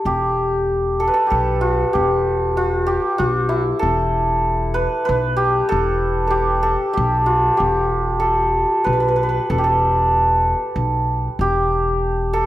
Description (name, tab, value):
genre	Persian modal ensemble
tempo	95 BPM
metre	3/4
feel	straight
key	E dastgah shur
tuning	A4 = 441 Hz
part	santur	melody	0.0-12.5 s	E4 to B4	-17 LUFS	equal	none
part	upright bass	bass	0.1-12.4 s	E1 to B1	-22 LUFS	equal	none
room	moderate recital hall reverb, RT60 1.5 s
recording	none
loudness	-16 LUFS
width	side -14 dB against mid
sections	0.1-12.5 A section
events	none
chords	none